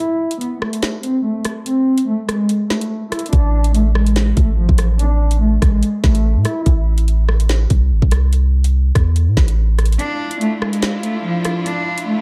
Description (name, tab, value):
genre	hip hop, drill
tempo	144 BPM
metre	4/4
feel	half-time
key	unclear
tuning	A4 = 440 Hz
part	warm cello	melody	0.0-6.6, 10.0-12.2 s	F3 to E4	-22 LUFS	equal	low-pass filter, tape echo
part	drill drum kit	drums	0.3-12.1 s	hi-hat, kick drum, rim click, snare drum	-20 LUFS	equal	none
part	long sustained 808-style bass	bass	3.3-10.0 s	G#1 to A2	-16 LUFS	equal	none
part	warm studio string section	sustained chords	10.0-12.2 s	D4 to F4	-28 LUFS	equal	none
room	light reverb, digital ambience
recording	none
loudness	-16 LUFS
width	mono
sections	0.0-12.2 A section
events	break 0.0-3.3, 10.0-12.2; filter sweep on cello 0.0-10.0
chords	0.0 N.C.; 3.3 D5; 6.7 Am; 10.0 Dmadd9